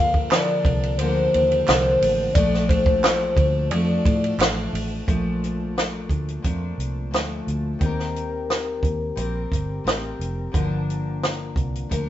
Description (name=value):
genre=indie pop, bedroom pop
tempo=88 BPM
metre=4/4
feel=straight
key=Bb major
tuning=A4 = 440 Hz
part: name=hollow clarinet-like synth lead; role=melody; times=0.0-4.4 s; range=C5 to F5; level=-22 LUFS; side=left 1 dB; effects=chorus
part: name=picked steel-string acoustic guitar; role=accompaniment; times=0.0-12.1 s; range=G2 to Bb4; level=-27 LUFS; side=left 2 dB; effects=vibrato effect
part: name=vintage muted fingered electric bass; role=bass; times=0.0-12.1 s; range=F1 to A2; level=-26 LUFS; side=right 1 dB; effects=none
part: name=compact cocktail drum kit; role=drums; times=0.1-12.1 s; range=hi-hat, kick drum, ride cymbal, snare drum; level=-23 LUFS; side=right 1 dB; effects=none
part: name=group handclap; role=percussion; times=0.3-4.6 s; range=none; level=-30 LUFS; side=right 4 dB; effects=none
room=moderate studio reverb, RT60 0.8 s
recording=band playing live in one room, nothing above 7.7 kHz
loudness=-20 LUFS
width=side -12 dB against mid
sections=0.0-5.1 A section; 5.1-12.1 B section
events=none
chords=0.0 Gm7; 2.4 Bbmaj7; 7.8 Eb6; 10.5 Gm7